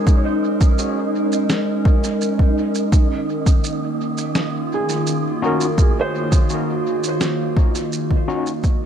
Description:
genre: ambient dub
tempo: 84 BPM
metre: 4/4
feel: straight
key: Eb dorian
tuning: A4 = 435 Hz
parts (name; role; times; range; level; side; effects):
- warbly tape-like pad; sustained chords; 0.0-8.9 s; Eb3 to Bb4; -21 LUFS; equal; chorus, built-in reverb
- felt-muted upright piano; arpeggios; 0.0-8.9 s; Ab4 to Db5; -28 LUFS; right 3 dB; dub echo
- wind-like tuned noise texture; texture; 0.0-8.9 s; Eb4; -27 LUFS; right 6 dB; built-in reverb
- electronic kick drum; drums; 0.1-8.8 s; none; -15 LUFS; equal; none
- electronic shaker and snare drum; drums; 0.1-8.8 s; none; -26 LUFS; right 1 dB; dub echo
- overdriven tine electric piano; stabs; 5.4-8.5 s; Db4 to Gb4; -28 LUFS; left 4 dB; fast tremolo, dub echo
room: light reverb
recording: echo-heavy mix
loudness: -16 LUFS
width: side -8 dB against mid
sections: 0.0-8.9 A section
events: fade-out 6.7-8.9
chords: 0.0 Absus4; 2.9 Ebm7

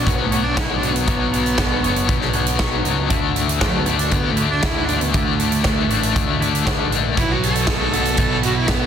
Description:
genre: quiet-loud alternative rock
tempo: 118 BPM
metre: 4/4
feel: straight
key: B minor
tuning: A4 = 439 Hz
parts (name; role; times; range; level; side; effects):
- clear cello; melody; 0.0-8.9 s; F#3 to A4; -24 LUFS; right 4 dB; plate reverb
- twangy electric guitar; arpeggios; 0.0-7.2 s; B2 to C#5; -28 LUFS; right 1 dB; wide subtle chorus, plate reverb, tape echo
- cranked stack guitar; riff; 0.0-8.9 s; B2 to D4; -22 LUFS; left 11 dB; overdrive, tremolo
- growling picked electric bass; bass; 0.0-8.9 s; F#1 to D2; -24 LUFS; right 1 dB; overdrive
- huge arena drum kit; drums; 0.1-8.8 s; hi-hat, kick drum, snare drum; -21 LUFS; equal; none
- thick fuzz guitar; riff; 7.2-8.9 s; B2 to B3; -24 LUFS; right 15 dB; distortion
room: light reverb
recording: dense, heavily limited modern master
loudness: -16 LUFS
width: side -8 dB against mid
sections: 0.0-8.9 A section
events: cello solo 0.0-8.9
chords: 0.0 Bmadd9; 3.1 Dsus2; 7.2 B5

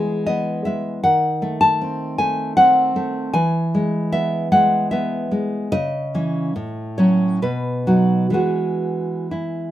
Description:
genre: romantic piece for solo classical guitar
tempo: 61-80 BPM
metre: 3/4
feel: rubato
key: E major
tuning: A4 = 442 Hz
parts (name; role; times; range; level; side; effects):
- nylon-string guitar; solo; 0.0-9.7 s; A2 to A5; -17 LUFS; equal; none
room: light reverb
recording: minimal, uncompressed stereo recording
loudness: -17 LUFS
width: side -13 dB against mid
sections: 0.0-9.7 A section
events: none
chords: 0.0 E; 1.1 D#dim7; 3.3 E; 5.7 C#m; 6.6 F#m/A; 7.4 B; 8.3 E

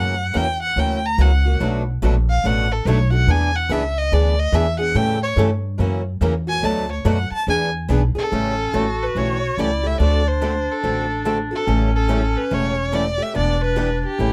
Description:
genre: acoustic string swing (jazz manouche)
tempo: 143 BPM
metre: 4/4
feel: swing 62% on 8ths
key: A mixolydian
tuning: A4 = 438 Hz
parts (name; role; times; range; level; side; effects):
- warm violin; melody; 0.0-14.3 s; G4 to A#5; -25 LUFS; equal; none
- picked steel-string acoustic guitar; accompaniment; 0.0-14.3 s; B2 to A4; -27 LUFS; equal; none
- picked swing-style acoustic guitar; accompaniment; 0.0-14.3 s; B2 to B4; -30 LUFS; equal; none
- upright bass; bass; 0.0-14.3 s; E1 to A2; -22 LUFS; equal; none
- bright clarinet; second line; 8.3-14.3 s; C#4 to F#4; -29 LUFS; equal; none
room: little or no reverb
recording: close, detailed microphones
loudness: -20 LUFS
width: mono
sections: 0.0-8.3 A section; 8.3-14.3 B section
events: violin solo 0.0-8.3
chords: 0.0 F#7; 1.6 Bm7; 3.3 E7; 5.0 A7; 5.8 F#7; 6.6 Bm7; 7.5 E7; 8.3 A7; 10.0 D7; 11.7 A7; 13.4 Em7

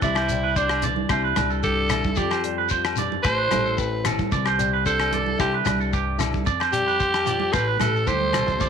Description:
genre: highlife guitar band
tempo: 112 BPM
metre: 4/4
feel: straight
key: C major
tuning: A4 = 440 Hz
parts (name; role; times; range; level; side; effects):
- raspy alto saxophone; melody; 0.0-8.7 s; D4 to C5; -24 LUFS; equal; slapback echo
- flamenco guitar; accompaniment; 0.0-8.7 s; F2 to E4; -31 LUFS; left 13 dB; none
- clean electric guitar; arpeggios; 0.0-8.7 s; G4 to D5; -26 LUFS; right 10 dB; slapback echo
- upright bass; bass; 0.0-8.7 s; A1 to F2; -28 LUFS; equal; none
- damped 70s drum kit; drums; 0.0-8.7 s; hi-hat, kick drum, rim click; -28 LUFS; left 3 dB; none
- congas; percussion; 0.0-8.7 s; none; -31 LUFS; right 13 dB; none
- shekere; percussion; 0.0-8.7 s; none; -33 LUFS; left 7 dB; none
- agogo bells; percussion; 0.2-8.5 s; none; -32 LUFS; left 16 dB; none
room: moderate spring reverb, RT60 1.6 s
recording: 1960s-style stereo with parts hard left and right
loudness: -20 LUFS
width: side -7 dB against mid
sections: 0.0-8.7 A section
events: alto saxophone solo 0.0-8.7; drum fill 8.1-8.6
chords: 0.0 Cadd9; 2.2 Fsus2; 3.2 Amadd9; 4.3 Cadd9; 6.5 Fsus2; 7.5 Amadd9

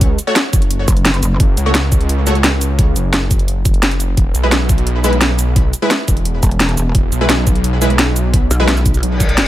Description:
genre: dark technical drum and bass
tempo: 173 BPM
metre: 4/4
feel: straight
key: unclear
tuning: A4 = 436 Hz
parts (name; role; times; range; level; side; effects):
- wide detuned saw bass; bass; 0.0-9.5 s; E1 to C#2; -16 LUFS; equal; chorus, tube saturation
- drum and bass drum kit; drums; 0.0-9.4 s; cabasa, hi-hat, snare drum; -16 LUFS; equal; overdrive
- electronic kick drum; drums; 0.0-9.3 s; none; -14 LUFS; equal; overdrive
- orchestra-hit-like synth stab; stabs; 0.3-2.3, 4.4-8.7 s; G#3 to C#5; -20 LUFS; equal; built-in reverb, digital delay
- pulsing pluck wobble bass; bass; 0.9-1.4, 6.4-9.0 s; E1 to B1; -15 LUFS; equal; chorus
- reverse cymbal; sound effects; 9.1-9.5 s; none; -19 LUFS; left 3 dB; none
room: little or no reverb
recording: none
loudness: -12 LUFS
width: side -14 dB against mid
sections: 0.0-9.5 A section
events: reverse cymbal 9.1-9.5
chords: 0.0 F#5; 4.2 E

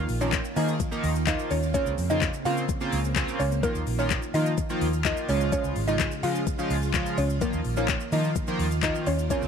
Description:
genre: dance-pop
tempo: 127 BPM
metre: 4/4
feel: straight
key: unclear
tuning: A4 = 442 Hz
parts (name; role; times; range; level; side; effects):
- chorused polysynth; accompaniment; 0.0-9.5 s; Db3 to Ab4; -30 LUFS; right 1 dB; sidechain pumping
- string machine, violins; sustained chords; 0.0-9.5 s; Db3 to F4; -34 LUFS; right 1 dB; ensemble chorus, sidechain pumping
- vintage muted fingered electric bass; bass; 0.0-9.5 s; Ab1 to Eb3; -28 LUFS; right 1 dB; sidechain pumping
- smooth R&B drum kit; drums; 0.1-9.5 s; handclaps, hi-hat, kick drum, shaker; -30 LUFS; left 4 dB; overdrive
- mallet-like synth pluck; melody; 0.2-9.4 s; Bb3 to F5; -29 LUFS; equal; chorus, phaser, slapback echo
- tube shaker; percussion; 0.2-9.5 s; none; -46 LUFS; right 22 dB; none
room: little or no reverb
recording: 1960s-style stereo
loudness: -23 LUFS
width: side -7 dB against mid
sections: 0.0-9.5 A section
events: none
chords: 0.0 Ebsus2; 1.7 Bbmadd9/Db; 3.6 Ebsus2; 5.3 Db; 7.4 Ebsus2

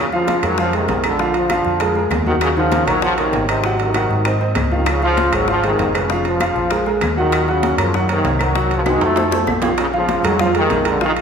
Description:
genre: latin, salsa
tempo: 196 BPM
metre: 4/4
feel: straight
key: Bb minor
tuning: A4 = 441 Hz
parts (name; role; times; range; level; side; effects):
- clear trombone section; melody; 0.0-11.2 s; Ab2 to Bb3; -19 LUFS; equal; none
- warm upright piano; accompaniment; 0.1-11.2 s; Eb3 to Gb5; -20 LUFS; equal; none
- bongos; percussion; 0.1-11.2 s; none; -28 LUFS; left 5 dB; none
- congas; percussion; 0.1-11.2 s; none; -29 LUFS; left 2 dB; none
- timbales; percussion; 0.3-11.2 s; none; -24 LUFS; right 3 dB; none
- hollow-body short-scale fingered electric bass; bass; 0.4-11.2 s; F1 to Ab2; -23 LUFS; equal; none
- claves; percussion; 0.4-9.6 s; none; -32 LUFS; left 4 dB; none
room: wet recital hall reverb, RT60 1.6 s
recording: recorded in a church or concert hall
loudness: -15 LUFS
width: side -6 dB against mid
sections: 0.0-9.8 A section; 9.8-11.2 A section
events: drum fill 8.9-9.8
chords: 0.0 Bbm7; 1.2 Bb7; 2.4 Ebm9; 3.6 Ab7; 4.9 Dbmaj7; 6.1 Bbm/F; 6.7 Ebmadd11/Bb; 7.3 Ebm7; 8.6 Cdim; 9.2 F; 9.8 Bbm7

